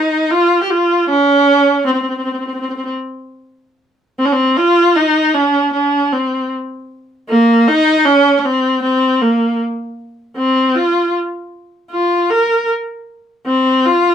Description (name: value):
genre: arabic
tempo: 78 BPM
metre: 4/4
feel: straight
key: C maqam bayati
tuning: A4 = 439 Hz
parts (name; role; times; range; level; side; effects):
- clear viola; solo; 0.0-14.1 s; Bb3 to Bb4; -12 LUFS; equal; none
room: light reverb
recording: none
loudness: -12 LUFS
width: side -8 dB against mid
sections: 0.0-3.4 A section; 3.4-14.1 B section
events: none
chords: none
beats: | 0.33 1.10 1.87 2.64 | 3.41 4.19 4.96 5.73 | 6.50 7.28 8.05 8.82 | 9.60 10.37 11.14 11.91 | 12.69 13.46